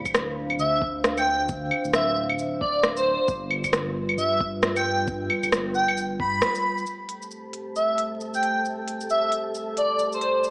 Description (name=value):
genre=future garage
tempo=134 BPM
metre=4/4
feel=swing 60% on 16ths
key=A minor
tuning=A4 = 440 Hz
part: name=dark analog pad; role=sustained chords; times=0.0-10.5 s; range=E3 to F5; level=-31 LUFS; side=equal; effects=chorus, sidechain pumping
part: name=dark detuned saw bass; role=bass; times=0.0-6.4 s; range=D1 to G2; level=-34 LUFS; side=equal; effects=sidechain pumping
part: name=electronic kick drum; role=drums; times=0.1-6.3 s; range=none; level=-34 LUFS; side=equal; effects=none
part: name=organic electronic drum kit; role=drums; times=0.1-10.5 s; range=claves, hi-hat, rim click, shaker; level=-25 LUFS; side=equal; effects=none
part: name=airy dreamy lead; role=melody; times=0.6-10.5 s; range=C5 to B5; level=-24 LUFS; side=equal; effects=chorus, vintage 12-bit sampler grit, tape echo
part: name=wind-like tuned noise texture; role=texture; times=7.3-10.5 s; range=A4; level=-36 LUFS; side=right 1 dB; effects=built-in reverb
room=moderate lush hall reverb, RT60 1.9 s, digital ambience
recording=dry, gritty hardware recording, vinyl crackle, small speaker sound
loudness=-22 LUFS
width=side -24 dB against mid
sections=0.0-6.9 A section; 6.9-10.5 B section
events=none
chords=0.0 Dm7; 3.3 G7; 6.9 Am7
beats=0.15 0.60 1.04 | 1.49 1.94 2.39 2.84 | 3.28 3.73 4.18 4.63 | 5.08 5.52 5.97 6.42 | 6.87 7.31 7.76 8.21 | 8.66 9.11 9.55 10.00 | 10.45